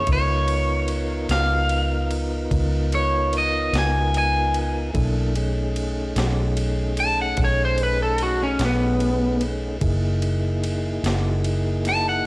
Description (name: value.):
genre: slow blues.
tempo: 49 BPM (dotted quarters).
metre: 12/8.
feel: straight.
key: unclear.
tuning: A4 = 439 Hz.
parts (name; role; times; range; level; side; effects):
electric guitar at the edge of break-up; melody; 0.0-12.3 s; B3 to A5; -22 LUFS; equal; spring reverb, cassette tape.
mellow tonewheel organ; sustained chords; 0.0-12.3 s; A3 to A#4; -28 LUFS; equal; slow rotary speaker, cassette tape.
vintage muted fingered electric bass; bass; 0.0-12.2 s; F#1 to C#2; -23 LUFS; equal; none.
boom bap sampler-style drum kit; drums; 0.1-12.0 s; kick drum, ride cymbal, snare drum; -30 LUFS; equal; none.
room: little or no reverb.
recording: home recording on cassette.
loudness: -19 LUFS.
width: side -22 dB against mid.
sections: 0.0-12.3 A section.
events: clean electric guitar solo 0.0-12.3.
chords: 0.1 C#13; 5.0 B13; 9.8 F#13.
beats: | 0.08 1.30 2.52 3.73 | 4.95 6.17 7.38 8.60 | 9.82 11.04 12.25.